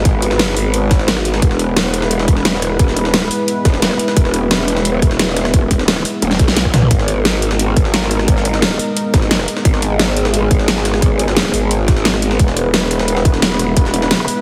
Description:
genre	dark technical drum and bass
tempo	175 BPM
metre	4/4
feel	straight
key	G# minor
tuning	A4 = 437 Hz
part	dark analog pad	sustained chords	0.0-14.4 s	G#3 to B4	-22 LUFS	equal	chorus, sidechain pumping
part	growl bass	bass	0.0-14.3 s	E1 to B1	-20 LUFS	equal	chorus, tube saturation
part	dubstep drum kit	drums	0.1-14.3 s	hi-hat, rim click, snare drum, toms	-20 LUFS	equal	studio reverb
part	electronic kick drum	drums	0.1-13.8 s	none	-15 LUFS	equal	studio reverb
part	jungle sampler-style drum kit	drums	0.1-14.4 s	hi-hat, snare drum	-27 LUFS	equal	high-pass filter on hats, studio reverb, high-pass filter on snare
room	light reverb, digital ambience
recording	heavily compressed radio sound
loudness	-15 LUFS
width	mono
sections	0.0-14.4 A section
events	drum fill 6.2-6.9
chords	0.0 G#m; 1.4 E; 6.9 G#madd9; 12.4 E

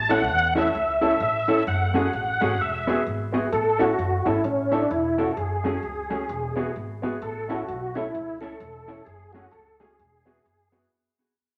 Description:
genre	ska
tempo	130 BPM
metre	4/4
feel	swing 60% on 8ths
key	A major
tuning	A4 = 439 Hz
part	tonewheel organ	melody	0.0-10.7 s	C#4 to A5	-27 LUFS	equal	chorus vibrato, slow rotary speaker
part	upright bass	bass	0.0-10.8 s	E1 to E2	-34 LUFS	equal	none
part	mellow electric guitar	accompaniment	0.1-10.8 s	A3 to C#5	-31 LUFS	equal	analog delay
part	dark upright piano	stabs	0.1-10.8 s	A3 to A4	-31 LUFS	equal	none
room	wet large studio reverb, RT60 1.2 s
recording	none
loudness	-24 LUFS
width	mono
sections	0.0-3.5 A section; 3.5-10.9 B section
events	fade-out 3.5-10.9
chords	0.0 A; 1.7 F#madd9; 2.6 Eadd9; 3.5 A; 5.4 F#madd9; 6.3 Eadd9; 7.2 A; 9.1 F#madd9; 10.0 Eadd9

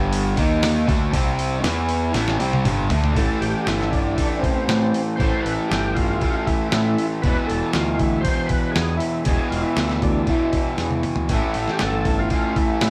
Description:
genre	classic rock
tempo	118 BPM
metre	4/4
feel	straight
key	A minor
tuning	A4 = 440 Hz
part	raw garage guitar	riff	0.0-12.9 s	E2 to E4	-29 LUFS	equal	overdrive
part	raw garage guitar	riff	0.0-12.9 s	E2 to E4	-27 LUFS	equal	overdrive, spring reverb
part	growling picked electric bass	bass	0.0-12.9 s	E1 to A2	-27 LUFS	equal	overdrive
part	dusty soul sampler-style drum kit	drums	0.1-12.9 s	hi-hat, kick drum, snare drum, toms	-26 LUFS	equal	none
part	overdriven tonewheel organ	melody	3.2-12.9 s	C4 to C5	-29 LUFS	equal	slow rotary speaker, chorus vibrato
room	moderate stone room reverb, RT60 1.1 s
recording	band playing live in one room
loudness	-21 LUFS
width	mono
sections	0.0-3.2 A section; 3.2-12.9 B section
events	drum fill 2.1-3.2, 10.8-11.3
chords	0.4 D#5; 0.9 D5; 1.1 C5; 1.6 E5; 2.1 Am; 3.2 A5; 7.2 E5; 11.3 A5

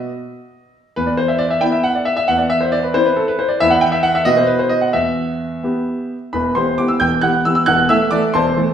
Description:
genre	classical-period piano sonatina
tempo	90 BPM (dotted quarters)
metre	6/8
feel	straight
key	E minor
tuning	A4 = 440 Hz
part	clear grand piano	solo	0.0-8.7 s	E1 to G6	-14 LUFS	equal	none
room	wet stone room reverb, RT60 1.3 s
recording	heard from further back in the room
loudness	-14 LUFS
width	side -8 dB against mid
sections	0.0-6.3 A section; 6.3-8.7 A section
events	none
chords	0.0 B; 1.0 E5; 2.3 D7sus2/E; 3.6 E5; 4.3 B5; 5.0 Em; 7.7 Am/E

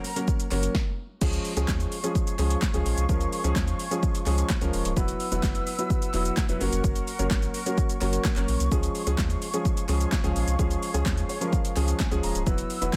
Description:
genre	dance-pop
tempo	128 BPM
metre	4/4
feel	straight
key	Db major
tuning	A4 = 440 Hz
part	warm baby grand piano	accompaniment	0.0-13.0 s	F3 to Bb5	-32 LUFS	equal	sidechain pumping
part	large flute ensemble	sustained chords	0.0-13.0 s	Ab4 to E6	-38 LUFS	equal	sidechain pumping
part	deep house drum kit	drums	0.0-13.0 s	crash cymbal, handclaps, hi-hat, kick drum, shaker, snare drum	-29 LUFS	equal	overdrive
part	warm sub bass	bass	0.5-13.0 s	Db1 to Eb2	-29 LUFS	equal	sidechain pumping
part	group handclap	percussion	0.5-13.0 s	none	-44 LUFS	equal	none
room	studio reverb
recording	dense, heavily limited modern master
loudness	-26 LUFS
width	mono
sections	0.0-1.2 A section; 1.2-13.0 A section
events	stop 0.7-1.2; grand piano fill 11.1-12.5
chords	0.0 Gb; 1.2 Db; 5.0 Esus2; 6.6 Gb; 8.7 Db

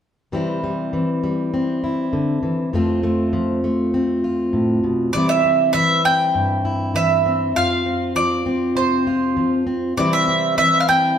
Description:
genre	indie folk with a building arrangement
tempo	100 BPM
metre	4/4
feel	straight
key	C major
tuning	A4 = 440 Hz
part	fingerpicked plugged-in steel-string acoustic guitar	accompaniment	0.3-11.2 s	F2 to F4	-19 LUFS	left 1 dB	none
part	bowl-back mandolin	melody	5.1-11.2 s	C5 to G5	-18 LUFS	right 2 dB	none
room	wet stone room reverb, RT60 1.4 s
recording	band playing live in one room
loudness	-17 LUFS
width	side -8 dB against mid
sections	0.3-5.1 A section; 5.1-11.2 B section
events	none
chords	0.3 C; 2.7 F; 5.1 C; 7.5 F5; 10.0 C

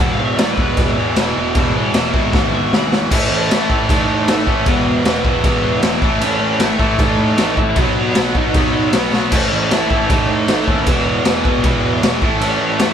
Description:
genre	punk rock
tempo	155 BPM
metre	4/4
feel	straight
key	unclear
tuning	A4 = 436 Hz
part	lead guitar through a small cranked amp	melody	0.0-12.9 s	B3 to C#6	-23 LUFS	right 2 dB	overdrive
part	distorted electric guitar	riff	0.0-12.9 s	E2 to B3	-22 LUFS	left 6 dB	overdrive
part	heavy high-gain guitar	riff	0.0-12.9 s	E2 to B3	-23 LUFS	equal	distortion
part	raw garage guitar	riff	0.0-12.9 s	E2 to B3	-20 LUFS	right 4 dB	overdrive
part	fuzz picked electric bass	bass	0.0-12.9 s	E1 to A2	-24 LUFS	equal	overdrive
part	raw garage drum kit	drums	0.4-12.9 s	crash cymbal, kick drum, snare drum	-17 LUFS	equal	none
room	light reverb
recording	band playing live in one room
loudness	-13 LUFS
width	side -8 dB against mid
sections	0.0-3.1 A section; 3.1-12.9 B section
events	drum fill 2.3-3.1, 9.1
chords	0.0 E; 3.1 A; 4.7 E5; 6.0 A; 7.8 B; 9.3 A; 10.9 E5; 12.2 A

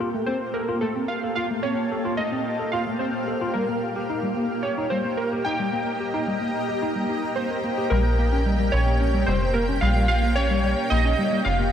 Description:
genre	IDM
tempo	110 BPM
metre	4/4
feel	straight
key	Bb melodic minor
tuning	A4 = 442 Hz
part	warbly lo-fi synth keys	melody	0.0-11.7 s	A4 to G5	-27 LUFS	right 1 dB	chorus, ping-pong delay
part	granular cloud pad	sustained chords	0.0-11.7 s	Bb3 to Bb5	-27 LUFS	equal	built-in reverb
part	tine electric piano	arpeggios	0.0-11.7 s	G3 to Bb4	-28 LUFS	left 2 dB	medium stereo tremolo, vintage 12-bit sampler grit, ping-pong delay
part	metallic FM bass	bass	7.9-11.7 s	F1 to Bb1	-22 LUFS	equal	none
room	moderate huge ambient reverb, RT60 6.9 s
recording	dreamy mix soaked in reverb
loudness	-21 LUFS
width	side -9 dB against mid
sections	0.0-7.9 A section; 7.9-11.7 B section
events	filter sweep on ambient pad 0.0-7.9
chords	0.0 F; 3.6 Eb; 7.9 Bbm6

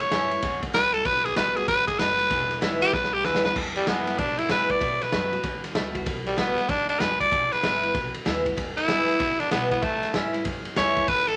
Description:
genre	rockabilly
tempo	191 BPM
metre	4/4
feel	swing 64% on 8ths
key	E major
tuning	A4 = 440 Hz
part	growling tenor saxophone	melody	0.0-11.4 s	G3 to D5	-25 LUFS	equal	none
part	picked steel-string acoustic guitar	accompaniment	0.0-11.4 s	E2 to F#4	-32 LUFS	equal	none
part	upright bass	bass	0.0-11.4 s	E1 to B2	-42 LUFS	equal	none
part	raw garage drum kit	drums	0.0-11.3 s	crash cymbal, kick drum, ride cymbal, snare drum	-31 LUFS	equal	none
room	light reverb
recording	none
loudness	-24 LUFS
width	mono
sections	0.0-3.6 A section; 3.6-11.4 B section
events	tenor saxophone solo 0.0-3.6; drum fill 2.9-3.6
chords	0.0 A; 1.1 B7; 2.3 E; 4.8 B7; 7.3 E; 9.8 A

